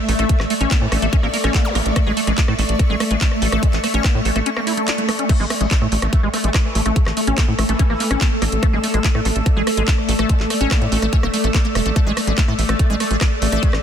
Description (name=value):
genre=psychedelic trance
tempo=144 BPM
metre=4/4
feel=straight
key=A major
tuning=A4 = 440 Hz
part: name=swarming drone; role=sustained chords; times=0.0-13.8 s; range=A3 to D5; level=-26 LUFS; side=equal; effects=built-in reverb, sidechain pumping
part: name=granular cloud pad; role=texture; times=0.0-13.8 s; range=A3 to E6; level=-25 LUFS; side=equal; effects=built-in reverb, sidechain pumping
part: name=metallic wobble bass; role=second line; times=0.1-1.6, 6.0-8.3, 12.7-13.7 s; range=E3 to A3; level=-32 LUFS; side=right 2 dB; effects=distortion, analog chorus, sidechain pumping, high-pass filter, dub echo
part: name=liquid acid bass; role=riff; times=0.1-13.7 s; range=G#3 to E4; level=-24 LUFS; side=equal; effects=chorus, auto-pan, sidechain pumping, tape echo
part: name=tight sequencer bass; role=bass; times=0.1-13.8 s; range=E1 to A2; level=-21 LUFS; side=equal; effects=none
part: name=garage drum kit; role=drums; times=0.1-13.8 s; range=crash cymbal, handclaps, hi-hat, rim click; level=-24 LUFS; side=equal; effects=none
part: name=electronic kick drum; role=drums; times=0.3-13.7 s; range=none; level=-17 LUFS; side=equal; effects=none
part: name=zap and swell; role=sound effects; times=1.6-1.8, 4.7-5.3 s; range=none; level=-29 LUFS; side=equal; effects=none
room=light reverb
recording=dense, heavily limited modern master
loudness=-15 LUFS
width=side -8 dB against mid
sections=0.0-13.8 A section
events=break 4.5-5.3; swell 4.7-5.3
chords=0.0 A5